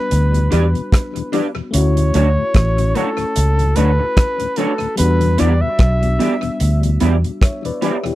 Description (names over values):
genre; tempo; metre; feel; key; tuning
lovers rock reggae; 74 BPM; 4/4; swing 57% on 16ths; unclear; A4 = 442 Hz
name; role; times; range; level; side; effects
warm flugelhorn; melody; 0.0-6.8 s; A4 to E5; -22 LUFS; equal; tape echo
FM electric piano; accompaniment; 0.0-8.2 s; G3 to E5; -25 LUFS; left 3 dB; chorus
vintage muted fingered electric bass; bass; 0.1-7.2 s; A1 to E2; -15 LUFS; equal; none
damped 70s drum kit; drums; 0.1-8.2 s; hi-hat, kick drum, rim click; -18 LUFS; equal; tape echo
mellow tonewheel organ; accompaniment; 0.3-8.1 s; D2 to D4; -26 LUFS; left 7 dB; slow rotary speaker, tape echo
electric guitar through a small old amp; stabs; 0.5-8.0 s; A3 to D5; -18 LUFS; right 3 dB; analog chorus
room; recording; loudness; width
little or no reverb; dry, close 1970s-style studio recording; -14 LUFS; side -16 dB against mid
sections
0.0-8.2 A section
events
none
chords
0.0 Em7; 1.7 Dmaj7; 5.0 Em7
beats
0.11 0.92 | 1.73 2.55 3.36 4.17 | 4.98 5.80 6.61 7.42